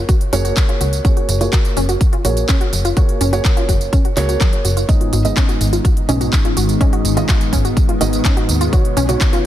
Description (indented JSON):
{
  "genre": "progressive house",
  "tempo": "125 BPM",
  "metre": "4/4",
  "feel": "straight",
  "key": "F# major",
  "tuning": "A4 = 440 Hz",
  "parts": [
    { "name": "wide unison pluck", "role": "arpeggios", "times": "0.0-9.4 s", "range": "F#3 to F#4", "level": "-23 LUFS", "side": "left 1 dB", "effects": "sidechain pumping, ping-pong delay" },
    { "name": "felt-muted upright piano", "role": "stabs", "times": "0.0-9.5 s", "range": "G#2 to D#5", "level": "-21 LUFS", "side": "right 2 dB", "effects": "vintage 12-bit sampler grit, sidechain pumping, ping-pong delay" },
    { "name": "plucky analog bass", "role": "bass", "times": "0.0-9.2 s", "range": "F#1 to D#2", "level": "-18 LUFS", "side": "equal", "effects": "sidechain pumping" },
    { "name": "electronic kick drum", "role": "drums", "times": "0.1-9.3 s", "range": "none", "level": "-15 LUFS", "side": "equal", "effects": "none" },
    { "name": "house drum kit", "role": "drums", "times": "0.1-9.4 s", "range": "handclaps, hi-hat, tambourine", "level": "-23 LUFS", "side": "right 1 dB", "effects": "none" },
    { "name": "evolving wavetable pad", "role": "sustained chords", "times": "5.7-9.5 s", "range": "D#3 to C#4", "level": "-24 LUFS", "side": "left 1 dB", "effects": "chorus, built-in reverb, sidechain pumping" }
  ],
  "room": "digital ambience",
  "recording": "dense, heavily limited modern master",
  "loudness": "-13 LUFS",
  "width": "side -12 dB against mid",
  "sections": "0.0-9.5 A section",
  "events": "none",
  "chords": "0.0 F#add9; 4.9 G#m; 8.7 Badd9"
}